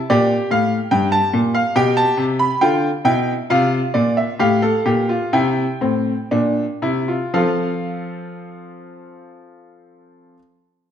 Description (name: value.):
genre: classical, baroque-style 3-part fugue for grand piano.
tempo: 57-74 BPM.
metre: 4/4.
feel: straight.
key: F major.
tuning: A4 = 440 Hz.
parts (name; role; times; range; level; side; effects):
bright grand piano; solo; 0.1-10.4 s; G2 to B5; -16 LUFS; equal; none.
room: wet recital hall reverb, RT60 1.3 s.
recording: none.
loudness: -16 LUFS.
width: side -9 dB against mid.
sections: 0.0-7.3 A section; 7.3-10.9 B section.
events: slowing down 0.0-7.3.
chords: 0.1 Gm; 1.8 G7/B; 3.5 C7; 7.3 F.